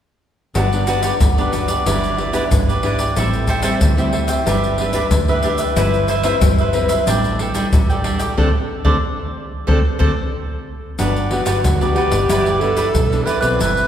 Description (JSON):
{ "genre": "samba and choro", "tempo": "92 BPM", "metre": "4/4", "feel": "straight", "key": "G major", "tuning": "A4 = 440 Hz", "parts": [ { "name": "nylon-string guitar", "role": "accompaniment", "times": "0.5-13.9 s", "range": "G2 to B4", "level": "-22 LUFS", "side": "left 3 dB", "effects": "none" }, { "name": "cavaquinho", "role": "accompaniment", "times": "0.6-13.9 s", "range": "D4 to G5", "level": "-21 LUFS", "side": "right 2 dB", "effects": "none" }, { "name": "vintage muted fingered electric bass", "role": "bass", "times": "0.6-13.9 s", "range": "G1 to D2", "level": "-22 LUFS", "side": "equal", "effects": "none" }, { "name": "egg shaker, surdo and pandeiro", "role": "percussion", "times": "0.6-13.9 s", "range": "none", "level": "-20 LUFS", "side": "equal", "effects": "none" }, { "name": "breathy alto saxophone", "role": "melody", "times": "11.0-13.9 s", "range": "D4 to B4", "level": "-19 LUFS", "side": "right 1 dB", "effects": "none" } ], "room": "wet church reverb, RT60 3.1 s", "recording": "recorded in a church or concert hall", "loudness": "-15 LUFS", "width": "side -9 dB against mid", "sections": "0.6-11.0 A section; 11.0-13.9 B section", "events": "band accent 8.4-11.0; drum fill 9.7-11.0", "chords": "0.6 Gmaj7; 1.9 Em7/G; 3.2 Am7; 4.5 G6; 5.8 Cmaj7/G; 7.1 A7sus4; 8.4 D5; 11.0 Gmaj7; 12.3 Em7/G", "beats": "| 0.56 1.21 1.86 2.51 | 3.16 3.82 4.47 5.12 | 5.77 6.42 7.08 7.73 | 8.38 9.04 9.69 10.34 | 10.99 11.65 12.30 12.95 | 13.61" }